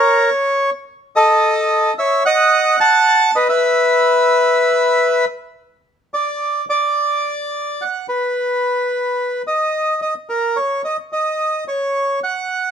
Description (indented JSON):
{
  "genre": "tango",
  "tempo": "108 BPM",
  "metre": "4/4",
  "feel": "rubato",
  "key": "unclear",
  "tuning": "A4 = 439 Hz",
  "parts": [
    { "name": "bandoneon", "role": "solo", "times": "0.0-12.7 s", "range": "A4 to A5", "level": "-14 LUFS", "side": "equal", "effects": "none" }
  ],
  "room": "moderate stone room reverb, RT60 1.0 s",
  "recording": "band playing live in one room",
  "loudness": "-14 LUFS",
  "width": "side -8 dB against mid",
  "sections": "0.0-5.8 A section; 5.8-12.7 B section",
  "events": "none",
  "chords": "0.0 N.C.; 1.4 A; 2.5 B7; 3.6 N.C."
}